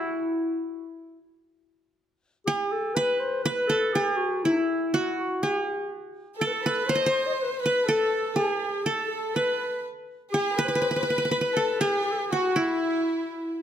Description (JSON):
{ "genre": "Arabic maqam ensemble", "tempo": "122 BPM", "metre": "4/4", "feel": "straight", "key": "E maqam suznak", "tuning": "A4 = 440 Hz", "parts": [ { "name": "qanun", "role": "melody", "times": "0.0-13.6 s", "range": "E4 to D#5", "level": "-26 LUFS", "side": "right 1 dB", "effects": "none" }, { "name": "mellow clarinet", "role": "second line", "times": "0.0-13.6 s", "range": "D#4 to D#5", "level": "-29 LUFS", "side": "left 2 dB", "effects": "none" }, { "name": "rich chamber violin section", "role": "second line", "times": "6.4-13.6 s", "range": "E4 to C5+20c", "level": "-32 LUFS", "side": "left 1 dB", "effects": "none" } ], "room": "light reverb", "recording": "close, detailed microphones", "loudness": "-24 LUFS", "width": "side -9 dB against mid", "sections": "0.0-13.6 A section", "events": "none", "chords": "none", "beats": "| 0.01 0.50 0.99 1.49 | 1.98 2.47 2.96 3.45 | 3.94 4.43 4.93 5.42 | 5.91 6.40 6.89 7.39 | 7.88 8.37 8.86 9.36 | 9.85 10.34 10.84 11.33 | 11.82 12.32 12.81 13.30" }